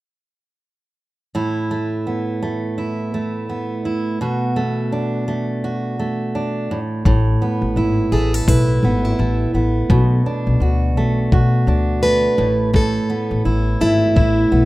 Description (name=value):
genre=acoustic pop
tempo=84 BPM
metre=4/4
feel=swing 60% on 16ths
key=unclear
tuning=A4 = 438 Hz
part: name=fingerpicked steel-string acoustic guitar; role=accompaniment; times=1.3-14.7 s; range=A2 to F#4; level=-20 LUFS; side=right 2 dB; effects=none
part: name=upright bass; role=bass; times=7.1-14.7 s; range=G#1 to B2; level=-18 LUFS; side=left 1 dB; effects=none
part: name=electronic kick drum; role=drums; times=7.1-14.4 s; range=none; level=-16 LUFS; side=left 1 dB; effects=none
part: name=picked plugged-in steel-string acoustic guitar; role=melody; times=8.1-14.7 s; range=E4 to B4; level=-19 LUFS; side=equal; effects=none
room=small room reverb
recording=rough home demo mix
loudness=-16 LUFS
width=side -18 dB against mid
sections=1.3-7.1 A section; 7.1-14.7 B section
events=none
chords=1.3 Asus2; 4.2 Bm7; 6.7 N.C.; 7.1 Asus2; 9.9 Bm7; 12.4 Asus2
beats=| 1.34 2.06 2.77 3.48 | 4.20 4.91 5.63 6.34 | 7.05 7.76 8.47 9.19 | 9.90 10.61 11.32 12.03 | 12.74 13.45 14.16